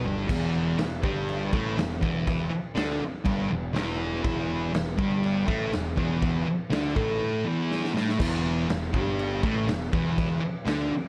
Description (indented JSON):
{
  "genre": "garage rock duo or trio",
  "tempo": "121 BPM",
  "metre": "4/4",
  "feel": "straight",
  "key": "E minor",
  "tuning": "A4 = 440 Hz",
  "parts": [
    { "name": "thick fuzz guitar", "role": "riff", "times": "0.0-10.9 s", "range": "E2 to D4", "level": "-29 LUFS", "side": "equal", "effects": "distortion" },
    { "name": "fuzz picked electric bass", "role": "bass", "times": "0.0-10.9 s", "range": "E1 to D2", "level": "-36 LUFS", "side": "equal", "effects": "overdrive" },
    { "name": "raw garage drum kit", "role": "drums", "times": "0.1-10.8 s", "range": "crash cymbal, kick drum, snare drum, toms", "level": "-33 LUFS", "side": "equal", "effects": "none" }
  ],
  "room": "moderate stone room reverb, RT60 0.9 s, small room reverb",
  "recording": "none",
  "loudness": "-27 LUFS",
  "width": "mono",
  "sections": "0.3-8.2 A section; 8.2-11.1 A section",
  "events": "drum fill 7.7-8.2",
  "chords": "0.3 Em"
}